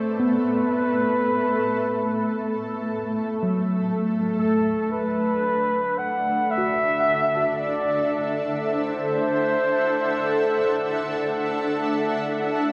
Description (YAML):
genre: ambient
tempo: 56 BPM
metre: 4/4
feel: straight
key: unclear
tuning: A4 = 440 Hz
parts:
  - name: granular cloud pad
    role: sustained chords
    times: 0.0-12.7 s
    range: A3 to F#5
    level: -27 LUFS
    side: equal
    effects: built-in reverb
  - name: tine electric piano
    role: arpeggios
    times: 0.0-12.7 s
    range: F#3 to F#5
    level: -30 LUFS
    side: equal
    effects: delay
  - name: mellow flugelhorn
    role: melody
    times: 0.1-11.8 s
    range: A4 to F#5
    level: -27 LUFS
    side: equal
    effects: delay
room: wet cathedral reverb, RT60 5.2 s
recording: in a vast, echoing space, cassette tape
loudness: -23 LUFS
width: mono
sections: 0.0-12.7 A section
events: fade-out on tine electric piano 0.0-12.7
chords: 0.0 Amadd9; 4.4 D7